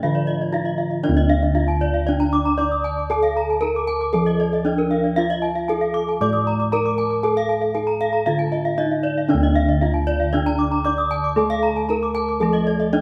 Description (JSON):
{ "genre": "Balinese gamelan", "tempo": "116 BPM", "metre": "4/4", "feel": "straight", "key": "D pelog", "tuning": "A4 = 440 Hz", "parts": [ { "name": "gamelan-type bronze metallophone", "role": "melody", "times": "0.0-13.0 s", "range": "D4 to D5", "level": "-25 LUFS", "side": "equal", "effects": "none" }, { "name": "gamelan-type bronze metallophone", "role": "accompaniment", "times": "0.0-1.0, 9.3-13.0 s", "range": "D3 to A3-30c", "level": "-30 LUFS", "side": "equal", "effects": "none" }, { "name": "gamelan-type bronze metallophone", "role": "arpeggios", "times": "0.0-13.0 s", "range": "Bb4-20c to Eb6+20c", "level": "-27 LUFS", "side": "equal", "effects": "none" }, { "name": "gamelan-type bossed gongs", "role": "bass", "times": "0.0-13.0 s", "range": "D2 to A4-30c", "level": "-25 LUFS", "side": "equal", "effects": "none" }, { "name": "gamelan-type bronze metallophone", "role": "arpeggios", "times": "0.1-12.7 s", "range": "D5 to Eb6+20c", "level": "-31 LUFS", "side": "equal", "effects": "none" } ], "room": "wet stone room reverb, RT60 1.4 s", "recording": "band playing live in one room", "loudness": "-20 LUFS", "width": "mono", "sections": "0.0-1.0 A section; 1.0-13.0 B section", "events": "none", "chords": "none" }